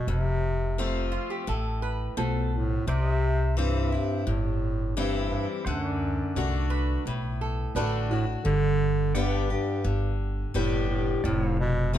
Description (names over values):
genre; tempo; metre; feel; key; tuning
honky-tonk and classic country; 86 BPM; 4/4; straight; G major; A4 = 440 Hz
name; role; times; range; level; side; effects
warm bass clarinet; melody; 0.0-12.0 s; F#2 to D3; -28 LUFS; right 1 dB; none
picked steel-string acoustic guitar; accompaniment; 0.0-12.0 s; F2 to G4; -32 LUFS; left 4 dB; none
upright bass; bass; 0.1-12.0 s; F1 to D2; -28 LUFS; equal; none
dark upright piano; accompaniment; 0.8-12.0 s; A3 to D5; -38 LUFS; right 4 dB; none
lap resonator guitar; second line; 1.1-2.5, 6.7-8.1 s; D4 to B4; -35 LUFS; right 4 dB; none
pedal steel guitar; sustained chords; 2.9-12.0 s; C5 to G5; -41 LUFS; right 2 dB; none
room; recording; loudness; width
light reverb; dark, warm production; -25 LUFS; side -11 dB against mid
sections
0.0-12.0 A section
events
none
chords
0.1 F; 2.9 C; 5.7 D; 8.5 G; 11.2 F